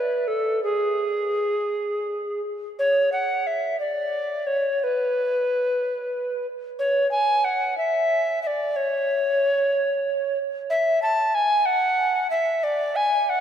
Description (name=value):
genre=classical, baroque-style fantasia for unaccompanied recorder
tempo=55-63 BPM (dotted quarters)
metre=6/8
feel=rubato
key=unclear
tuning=A4 = 440 Hz
part: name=mellow tenor recorder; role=solo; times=0.0-13.4 s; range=G#4 to A5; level=-21 LUFS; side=equal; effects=none
room=wet cathedral reverb, RT60 4.5 s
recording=none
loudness=-21 LUFS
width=side -9 dB against mid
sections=0.0-2.8 A section; 2.8-13.4 B section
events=none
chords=none